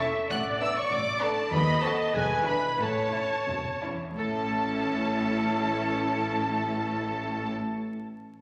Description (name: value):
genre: cinematic, playful, whimsical film cue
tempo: 83-99 BPM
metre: 2/4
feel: straight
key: A major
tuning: A4 = 441 Hz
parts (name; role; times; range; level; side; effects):
- clear studio violin section; melody; 0.0-7.5 s; G#5 to F#6; -34 LUFS; equal; none
- marimba with medium hard mallets; melody; 0.0-7.5 s; G#4 to F#5; -36 LUFS; equal; none
- rich studio violin section; second line; 0.0-7.5 s; B3 to A4; -36 LUFS; equal; none
- rich studio viola section; accompaniment; 0.0-7.5 s; C#4 to E5; -34 LUFS; equal; none
- clear studio double bass section; bass; 0.0-7.5 s; E1 to D#2; -37 LUFS; equal; none
- rich studio cello section; bass; 0.0-7.5 s; D#2 to A2; -37 LUFS; equal; none
room: wet scoring stage reverb, RT60 2.0 s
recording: vinyl crackle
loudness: -28 LUFS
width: mono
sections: 0.0-4.2 A section; 4.2-7.1 B section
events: slowing down 0.9-4.2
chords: 0.3 Bm7/A; 1.5 D#dim7; 2.1 E7; 2.8 A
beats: | 0.30 0.91 | 1.52 2.15 | 2.80 3.48 | 4.20 4.91 | 5.64 6.36